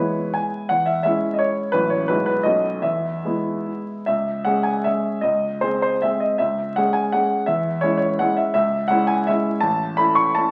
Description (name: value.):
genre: classical, romantic triple-time dance for piano with dotted rhythms.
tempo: 135-188 BPM.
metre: 3/4.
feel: rubato.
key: E major, C# minor from 4.1 s.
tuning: A4 = 440 Hz.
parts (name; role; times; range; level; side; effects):
warm grand piano; solo; 0.0-10.5 s; A1 to C#6; -21 LUFS; equal; none.
room: wet recital hall reverb, RT60 1.3 s.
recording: very old 78 rpm record, vinyl crackle.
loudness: -21 LUFS.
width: mono.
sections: 0.0-4.1 A section; 4.1-10.5 B section.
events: none.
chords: 0.0 E; 0.7 C#m/E; 1.8 F#m7/A; 2.1 E/B; 2.5 B9; 2.8 E; 4.1 C#m; 5.2 G#/C#; 6.4 C#m; 7.5 C#m/E; 8.6 C#m; 9.6 A.